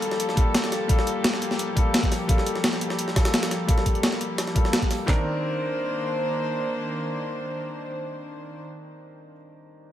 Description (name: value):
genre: liquid drum and bass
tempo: 172 BPM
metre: 4/4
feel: straight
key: C minor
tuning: A4 = 440 Hz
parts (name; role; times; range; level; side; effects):
- clear grand piano; accompaniment; 0.0-9.9 s; Eb3 to Bb4; -30 LUFS; left 2 dB; low-pass filter, tape echo
- dark studio string section; sustained chords; 0.0-8.6 s; Eb3 to C5; -30 LUFS; equal; sidechain pumping
- breakbeat sampler-style drum kit; drums; 0.0-5.0 s; hi-hat, snare drum; -26 LUFS; equal; none
- jungle sampler-style drum kit; drums; 0.0-5.0 s; hi-hat, snare drum; -30 LUFS; equal; high-pass filter on hats, high-pass filter on snare
- drum and bass drum kit; drums; 0.4-5.2 s; handclaps, kick drum, snare drum; -22 LUFS; equal; none
room: light reverb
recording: none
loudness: -22 LUFS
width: side -11 dB against mid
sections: 0.0-5.1 A section; 5.1-7.9 B section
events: filter sweep on grand piano 0.0-5.1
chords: 0.0 Gm9; 5.1 Cm9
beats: 0.20 0.55 | 0.90 1.24 1.59 1.94 | 2.29 2.64 2.99 3.34 | 3.69 4.03 4.38 4.73 | 5.08 5.43 5.78 6.13 | 6.48 6.83 7.17 7.52